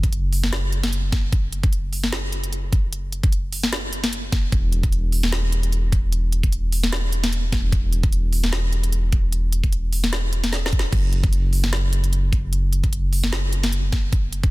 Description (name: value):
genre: future bass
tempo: 150 BPM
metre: 4/4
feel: swing 55% on 16ths, half-time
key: unclear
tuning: A4 = 436 Hz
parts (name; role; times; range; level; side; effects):
- long sustained 808-style bass; bass; 0.0-14.5 s; E1 to F#1; -22 LUFS; equal; sidechain pumping
- electronic kick drum; drums; 0.0-14.5 s; none; -20 LUFS; equal; none
- trap drum kit; drums; 0.0-14.5 s; crash cymbal, hi-hat, snare drum; -26 LUFS; equal; none
room: little or no reverb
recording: dense, heavily limited modern master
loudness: -19 LUFS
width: side -20 dB against mid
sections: 0.0-14.5 A section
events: drum fill 10.5-10.9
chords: none